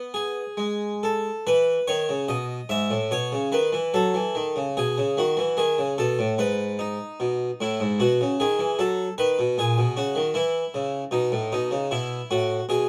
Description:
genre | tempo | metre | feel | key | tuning
classical, baroque-style suite movement for harpsichord | 75 BPM | 4/4 | uneven beats, rubato | E major | A4 = 440 Hz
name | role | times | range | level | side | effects
harpsichord | solo | 0.0-12.9 s | G#2 to E5 | -24 LUFS | equal | none
room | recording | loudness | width
light reverb | close, detailed microphones | -25 LUFS | mono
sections
0.0-1.5 A section; 1.5-12.9 B section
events
none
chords
0.0 E; 3.1 B7; 4.8 E; 8.0 B; 9.6 A#m7b5 (rootless); 11.1 B

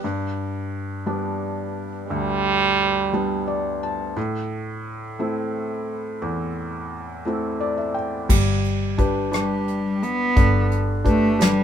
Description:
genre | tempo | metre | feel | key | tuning
acoustic folk-pop ballad | 58 BPM (dotted quarters) | 6/8 | straight | G major | A4 = 438 Hz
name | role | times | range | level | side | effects
stopped French horn | second line | 0.0-3.8 s | G3 | -21 LUFS | right 5 dB | none
felt-muted upright piano | accompaniment | 0.0-11.6 s | D2 to A5 | -25 LUFS | left 1 dB | none
fingered electric bass | bass | 8.3-11.6 s | G1 | -23 LUFS | equal | none
soft brush drum kit | drums | 8.3-11.6 s | crash cymbal, hi-hat, kick drum, rim click, snare drum | -21 LUFS | equal | none
warm cello | melody | 9.3-11.6 s | G3 to B3 | -21 LUFS | right 1 dB | none
room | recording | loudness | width
light reverb | minimal, uncompressed stereo recording | -21 LUFS | side -9 dB against mid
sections
0.0-8.3 A section; 8.3-11.6 B section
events
French horn solo 0.0-8.3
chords
0.0 G; 4.2 Am; 8.3 G

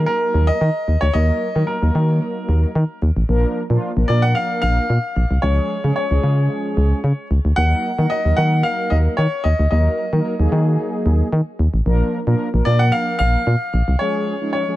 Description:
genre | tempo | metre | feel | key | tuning
dance-pop | 112 BPM | 4/4 | straight | Eb minor | A4 = 444 Hz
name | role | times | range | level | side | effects
mellow synth brass | accompaniment | 0.0-14.8 s | F3 to Bb4 | -24 LUFS | right 1 dB | chorus
solid FM bass | bass | 0.0-14.0 s | A1 to Eb3 | -16 LUFS | equal | none
clear grand piano | melody | 0.1-14.8 s | Bb4 to Gb5 | -22 LUFS | left 1 dB | none
room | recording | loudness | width
small room ambience | none | -16 LUFS | side -16 dB against mid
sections
0.0-14.8 A section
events
break 14.0-14.8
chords
0.0 Ebm; 3.3 Bb; 5.4 Db; 7.6 Ebm; 11.9 Bb; 14.0 Db

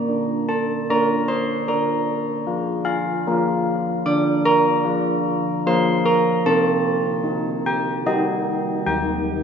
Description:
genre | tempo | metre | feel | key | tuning
classical, tune for church bells | 75 BPM | 3/4 | straight | unclear | A4 = 442 Hz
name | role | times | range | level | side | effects
old church bells | solo | 0.0-9.4 s | Eb3 to D6 | -18 LUFS | equal | none
room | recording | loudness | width
wet cathedral reverb, RT60 4.5 s | nothing above 7.5 kHz | -18 LUFS | side -7 dB against mid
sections
0.0-9.4 A section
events
none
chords
0.0 Gm/Bb (rootless); 1.7 Bb/D; 6.4 Cm; 8.9 Cm/Eb (rootless)

